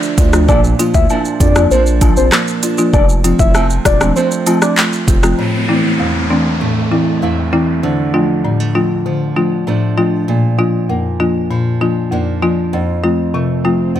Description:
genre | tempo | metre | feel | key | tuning
dancehall | 98 BPM | 4/4 | straight | A phrygian | A4 = 440 Hz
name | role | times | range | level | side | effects
nylon-string guitar | arpeggios | 0.0-14.0 s | F2 to E4 | -20 LUFS | right 7 dB | none
afro-pop drum kit | drums | 0.0-5.4 s | handclaps, hi-hat, kick drum, rim click, shaker | -14 LUFS | equal | none
folk marimba with medium mallets | accompaniment | 0.2-14.0 s | E2 to F4 | -15 LUFS | left 2 dB | none
round analog bass | bass | 0.2-5.3 s | E1 to F2 | -15 LUFS | equal | none
cabasa and woodblock | percussion | 0.2-5.2 s | none | -25 LUFS | left 2 dB | none
soft octave-layered synth lead | melody | 0.5-4.7 s | C5 to E5 | -17 LUFS | left 2 dB | chorus, phaser, tape echo
downlifter and swell | sound effects | 5.4-14.0 s | none | -23 LUFS | left 1 dB | none
room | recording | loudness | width
light reverb | none | -11 LUFS | side -11 dB against mid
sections
0.0-5.4 A section; 5.4-14.0 B section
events
swell 13.2-14.0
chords
0.5 Bb; 2.9 F; 5.4 Am; 7.8 Dm; 10.3 Bb; 12.7 F

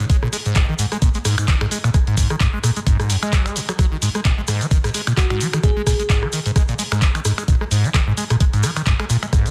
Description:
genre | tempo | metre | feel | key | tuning
acid house | 130 BPM | 4/4 | swing 56% on 16ths | unclear | A4 = 441 Hz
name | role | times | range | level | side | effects
liquid acid bass | riff | 0.0-9.5 s | F#2 to G#3 | -23 LUFS | equal | phaser, overdrive, analog chorus, sidechain pumping, tape echo
punchy analog drum machine | drums | 0.0-9.5 s | finger snaps, handclaps, hi-hat, rim click | -27 LUFS | equal | soft clipping on snare
shekere | percussion | 0.0-9.5 s | none | -32 LUFS | equal | none
electronic kick drum | drums | 0.1-9.4 s | none | -20 LUFS | equal | none
bell-like FM electric piano | melody | 5.2-6.2 s | F#4 to G#4 | -30 LUFS | equal | chorus, tape echo
room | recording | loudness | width
light reverb | dense, heavily limited modern master | -19 LUFS | mono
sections
0.0-9.5 A section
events
none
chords
none

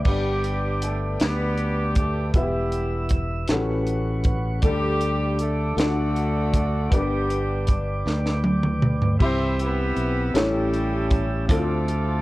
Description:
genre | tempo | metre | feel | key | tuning
slow gospel | 52 BPM (dotted quarters) | 6/8 | straight | G major | A4 = 441 Hz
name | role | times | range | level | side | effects
warm upright piano | accompaniment | 0.0-12.2 s | G2 to B5 | -28 LUFS | left 2 dB | none
mellow tonewheel organ | sustained chords | 0.0-12.2 s | C4 to E6 | -31 LUFS | right 1 dB | slow rotary speaker
crisp fusion drum kit | drums | 0.0-12.1 s | crash cymbal, hi-hat, kick drum, snare drum, toms | -23 LUFS | equal | none
warm horn section | melody | 0.1-12.2 s | G3 to C5 | -28 LUFS | equal | none
modern bright fingered electric bass | bass | 0.1-12.2 s | E1 to D2 | -25 LUFS | equal | tube saturation
room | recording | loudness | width
little or no reverb | worn, warbling old tape, cassette tape, warbly pitch drift | -20 LUFS | side -18 dB against mid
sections
0.1-9.2 A section; 9.2-12.2 B section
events
drum fill 8.1-9.2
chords
0.1 G; 2.3 Em; 3.5 A13; 4.6 Dsus4; 5.8 D; 6.9 G; 9.2 Cmaj7; 10.3 A7; 11.5 Dm7

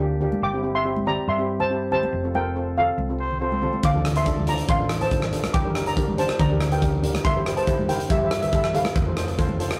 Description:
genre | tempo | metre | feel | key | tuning
calypso | 140 BPM | 4/4 | straight | F major | A4 = 440 Hz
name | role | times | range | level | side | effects
steel pan | melody | 0.0-9.8 s | F4 to D6 | -27 LUFS | equal | none
steel pan | accompaniment | 0.0-9.8 s | Bb3 to C5 | -31 LUFS | equal | none
hollow-body short-scale fingered electric bass | bass | 0.0-9.7 s | F1 to G2 | -30 LUFS | equal | none
congas | percussion | 0.2-9.6 s | none | -34 LUFS | equal | none
dark trumpet | second line | 3.2-3.9 s | C5 | -30 LUFS | equal | none
big rock drum kit | drums | 3.8-9.8 s | hi-hat, kick drum, rim click | -26 LUFS | equal | none
room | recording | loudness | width
moderate studio reverb, RT60 0.7 s | rough rehearsal-room recording | -23 LUFS | mono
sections
0.0-9.8 A section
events
none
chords
0.4 C/G; 2.1 Fadd9; 3.8 Dm7; 5.5 Gm; 7.2 C/G; 9.0 F

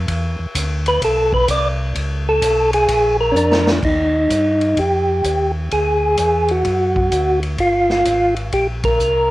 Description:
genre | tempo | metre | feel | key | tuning
soul jazz organ trio | 128 BPM | 4/4 | swing 66% on 8ths | Eb major from 3.8 s | A4 = 441 Hz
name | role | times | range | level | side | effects
mellow tonewheel organ | bass | 0.0-9.3 s | G1 to G2 | -22 LUFS | equal | slow rotary speaker
swinging big-band drum kit | drums | 0.1-9.1 s | crash cymbal, hi-hat, kick drum, ride cymbal, snare drum | -24 LUFS | equal | cassette tape
percussive tonewheel organ | melody | 0.9-9.3 s | C#4 to D5 | -15 LUFS | equal | slow rotary speaker, cassette tape
room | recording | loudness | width
light reverb, small room ambience | home recording on cassette | -14 LUFS | side -17 dB against mid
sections
0.0-3.8 A section; 3.8-9.3 B section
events
tonewheel organ solo 0.0-3.8; drum fill 3.4-3.8; band accent 8.8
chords
0.1 Cmaj9; 1.9 Amaj9; 2.9 A#; 3.8 Eb; 5.7 D; 7.6 Gm7

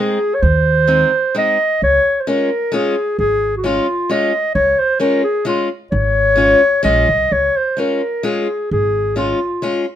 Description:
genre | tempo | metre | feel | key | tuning
alpine folk, alpine dance band | 131 BPM | 3/4 | straight | Db major | A4 = 441 Hz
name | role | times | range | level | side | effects
warm clarinet | melody | 0.0-9.8 s | F4 to Eb5 | -15 LUFS | equal | none
picked steel-string acoustic guitar | accompaniment | 0.0-9.8 s | Ab3 to F4 | -19 LUFS | left 2 dB | none
upright bass | bass | 0.4-9.3 s | Ab1 to Eb2 | -18 LUFS | right 1 dB | none
room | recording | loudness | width
light reverb | minimal, uncompressed stereo recording | -13 LUFS | side -10 dB against mid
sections
0.0-7.3 A section; 7.3-10.0 A section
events
none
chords
0.0 Ab; 1.8 Db

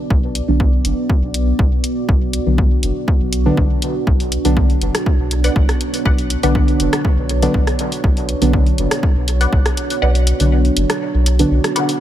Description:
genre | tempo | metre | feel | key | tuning
dub techno | 121 BPM | 4/4 | straight | B minor | A4 = 441 Hz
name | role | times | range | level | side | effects
deep dark ambient pad | sustained chords | 0.0-12.0 s | B3 to D5 | -23 LUFS | right 2 dB | chorus, built-in reverb, sidechain pumping
soft dub sub bass | bass | 0.1-11.6 s | F#1 to B1 | -17 LUFS | equal | sidechain pumping
electronic kick drum | drums | 0.1-9.6 s | none | -16 LUFS | equal | none
punchy analog drum machine | drums | 0.4-12.0 s | hi-hat, rim click | -23 LUFS | equal | dub echo
deep mellow chord stab | stabs | 0.5-11.5 s | D3 to D4 | -20 LUFS | equal | chorus, phaser, sidechain pumping, dub echo
filtered dub chord stab | riff | 5.4-11.8 s | B4 to F#5 | -25 LUFS | left 2 dB | phaser, sidechain pumping, dub echo
room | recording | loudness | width
light reverb, digital ambience | none | -14 LUFS | side -12 dB against mid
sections
0.0-12.0 A section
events
kick drops out 10.0-12.0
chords
0.0 Bm

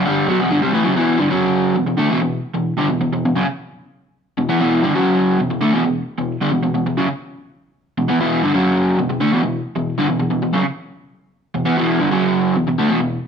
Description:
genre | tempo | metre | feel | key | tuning
rock | 133 BPM | 4/4 | straight | E minor | A4 = 441 Hz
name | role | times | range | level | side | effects
crunchy overdriven guitar | solo | 0.0-13.2 s | E2 to B3 | -16 LUFS | equal | none
room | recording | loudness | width
moderate large studio reverb, RT60 1.1 s | band playing live in one room | -16 LUFS | side -7 dB against mid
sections
1.0-13.3 A section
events
none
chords
0.0 Em; 1.3 F#5; 1.8 E5; 4.9 F#5; 5.4 E5; 8.5 F#5; 9.0 E5; 12.1 F#5; 12.6 E5

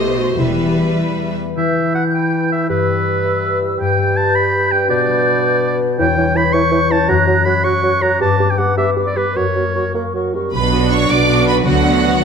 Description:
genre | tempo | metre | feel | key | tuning
classical, dramatic, fast romantic movement for symphony orchestra | 100-110 BPM (dotted quarters) | 6/8 | rubato | E minor, B minor from 6.0 s | A4 = 440 Hz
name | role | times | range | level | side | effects
rich chamber violin section | melody | 0.0-1.4, 10.5-12.2 s | D#5 to D6 | -21 LUFS | right 4 dB | none
clear symphonic violin section | second line | 0.0-1.4, 10.5-12.2 s | F#4 to D5 | -22 LUFS | equal | none
dark clarinet | second line | 0.0-10.5 s | E4 to C#5 | -22 LUFS | left 1 dB | none
clear symphonic viola section | accompaniment | 0.0-1.4, 10.7-12.2 s | G3 to F#4 | -21 LUFS | right 4 dB | none
concert harp | arpeggios | 0.0-12.2 s | E2 to B5 | -20 LUFS | left 8 dB | none
clear symphonic double bass section | bass | 0.0-0.8, 10.5-12.2 s | E1 to D2 | -21 LUFS | right 3 dB | none
warm symphonic cello section | bass | 0.0-1.4, 10.5-12.2 s | E2 to D3 | -21 LUFS | right 4 dB | none
mellow hollow flute section | second line | 1.6-10.5 s | C#6 to G6 | -21 LUFS | right 1 dB | none
warm oboe | second line | 1.6-9.9 s | B4 to C#6 | -19 LUFS | right 3 dB | none
dark bassoon | accompaniment | 1.6-10.5 s | B2 to A#3 | -20 LUFS | right 4 dB | none
clear French horn section | sustained chords | 10.5-12.2 s | F#3 to D4 | -21 LUFS | left 4 dB | none
room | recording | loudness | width
moderate scoring stage reverb, RT60 1.8 s | none | -13 LUFS | side -6 dB against mid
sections
0.0-1.6 A section; 1.6-10.5 A section; 10.5-12.2 B section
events
none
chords
0.4 Em; 2.7 Em/G; 3.8 G; 4.9 G/B; 6.0 C#m7b5/E; 7.1 F#; 8.2 G; 9.4 F#; 10.5 Bm; 11.7 Bm/D

